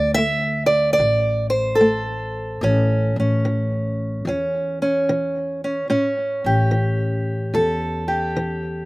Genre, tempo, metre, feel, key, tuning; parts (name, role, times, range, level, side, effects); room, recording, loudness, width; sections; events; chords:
acoustic country blues, solo or duo; 73 BPM; 4/4; swing 67% on 8ths; A mixolydian; A4 = 441 Hz
fingerpicked steel-string acoustic guitar; melody; 0.0-8.9 s; A2 to E5; -20 LUFS; right 1 dB; slapback echo
upright bass; bass; 0.0-8.9 s; A1 to E2; -23 LUFS; left 1 dB
little or no reverb; recorded outdoors, with no room sound; -18 LUFS; side -21 dB against mid
0.0-8.9 A section
0.0 D5; 2.6 A7